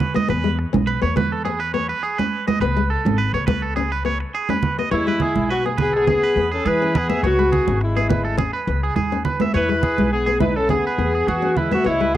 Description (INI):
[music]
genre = highlife guitar band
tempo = 104 BPM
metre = 4/4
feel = straight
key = E major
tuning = A4 = 441 Hz
[part]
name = nylon-string guitar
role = accompaniment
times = 0.0-12.2 s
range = G#3 to E4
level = -26 LUFS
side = left 8 dB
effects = cassette tape
[part]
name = twangy electric guitar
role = arpeggios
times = 0.0-12.2 s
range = G#4 to E5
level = -24 LUFS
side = right 4 dB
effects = tremolo, cassette tape
[part]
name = congas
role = percussion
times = 0.0-12.2 s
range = none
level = -23 LUFS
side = right 4 dB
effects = none
[part]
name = upright bass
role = bass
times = 0.3-12.2 s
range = G#1 to E3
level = -24 LUFS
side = left 1 dB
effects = none
[part]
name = warm horn section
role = melody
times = 4.9-12.2 s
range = G#3 to B4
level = -20 LUFS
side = left 1 dB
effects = cassette tape
[sound]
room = light reverb, small room ambience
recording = home recording on cassette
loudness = -17 LUFS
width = side -12 dB against mid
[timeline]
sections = 0.0-4.9 A section; 4.9-12.2 B section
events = none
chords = 0.3 E; 2.6 C#5; 4.9 E; 7.2 C#m7; 9.5 E